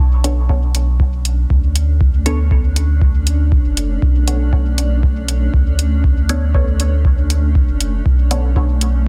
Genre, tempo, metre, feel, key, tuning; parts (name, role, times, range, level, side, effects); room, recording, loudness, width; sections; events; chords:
dub techno; 119 BPM; 4/4; straight; B minor; A4 = 440 Hz
granular cloud pad; sustained chords; 1.3-9.1 s; A3 to D4; -29 LUFS; equal; built-in reverb, sidechain pumping
pure sine sub bass; bass; 0.0-9.1 s; F#1 to D2; -18 LUFS; equal; sidechain pumping
filtered dub chord stab; stabs; 0.2-8.7 s; B3 to C#5; -28 LUFS; equal; phaser, sidechain pumping, dub echo
electronic hi-hat; drums; 0.2-8.9 s; -23 LUFS; equal; overdrive
electronic kick drum; drums; 0.5-8.7 s; -18 LUFS; equal; overdrive
little or no reverb; dense, heavily limited modern master; -15 LUFS; mono
0.0-9.1 A section
0.0 Bm9